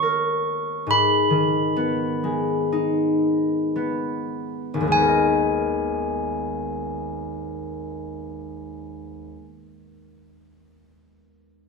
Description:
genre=children's music, lullaby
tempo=50-73 BPM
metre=4/4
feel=rubato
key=G# harmonic minor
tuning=A4 = 440 Hz
part: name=handbells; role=melody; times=0.0-9.4 s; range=G#5 to C#6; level=-24 LUFS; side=equal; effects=none
part: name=concert harp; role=accompaniment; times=0.0-9.6 s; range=G#1 to D#5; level=-23 LUFS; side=left 2 dB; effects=none
room=moderate studio reverb, RT60 0.6 s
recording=minimal, uncompressed stereo recording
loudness=-20 LUFS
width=side -4 dB against mid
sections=0.0-4.9 A section; 4.9-9.6 B section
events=slowing down 0.0-4.9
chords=0.0 D#7; 0.9 G#m; 4.9 G#madd9

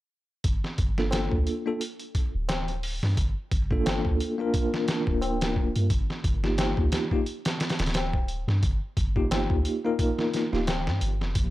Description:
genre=trip hop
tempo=88 BPM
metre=4/4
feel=swing 56% on 16ths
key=G minor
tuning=A4 = 440 Hz
part: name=soft 808-style bass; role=bass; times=0.4-11.5 s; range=D1 to G2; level=-28 LUFS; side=equal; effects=none
part: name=trip hop sampler-style drum kit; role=drums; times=0.4-11.5 s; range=hi-hat, kick drum, snare drum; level=-27 LUFS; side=equal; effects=none
part: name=bell-like tine electric piano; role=accompaniment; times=1.0-10.7 s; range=Bb3 to Bb4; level=-28 LUFS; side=equal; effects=medium stereo tremolo, tape echo
part: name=tabla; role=percussion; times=1.1-10.8 s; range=none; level=-35 LUFS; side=left 3 dB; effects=none
part: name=warbly tape-like pad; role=sustained chords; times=11.4-11.5 s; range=F3 to G4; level=-34 LUFS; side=left 1 dB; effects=chorus, built-in reverb
room=little or no reverb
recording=dry, gritty hardware recording, transformer saturation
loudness=-24 LUFS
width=side -16 dB against mid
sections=0.4-11.5 A section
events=none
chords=0.4 Gm7; 5.9 Ebadd9

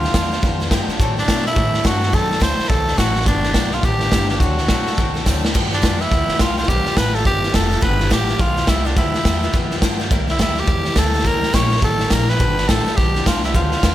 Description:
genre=rockabilly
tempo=211 BPM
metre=4/4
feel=swing 61% on 8ths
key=G mixolydian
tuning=A4 = 440 Hz
part: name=raspy tenor saxophone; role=melody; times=0.0-13.9 s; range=D4 to C#5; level=-22 LUFS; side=equal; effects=tape echo
part: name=picked steel-string acoustic guitar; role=accompaniment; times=0.0-13.9 s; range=G2 to A4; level=-26 LUFS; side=left 3 dB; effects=none
part: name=upright bass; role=bass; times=0.0-13.9 s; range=F1 to B2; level=-22 LUFS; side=equal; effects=none
part: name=raw garage drum kit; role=drums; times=0.0-13.9 s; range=crash cymbal, hi-hat, kick drum, snare drum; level=-18 LUFS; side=equal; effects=none
room=little or no reverb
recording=none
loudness=-15 LUFS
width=side -13 dB against mid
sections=0.0-5.5 A section; 5.5-13.9 A section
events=drum fill 5.3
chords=0.0 G7; 1.0 D7; 3.3 G7; 4.4 D7; 5.5 G7; 10.1 C7; 11.3 C#dim7; 12.4 G7

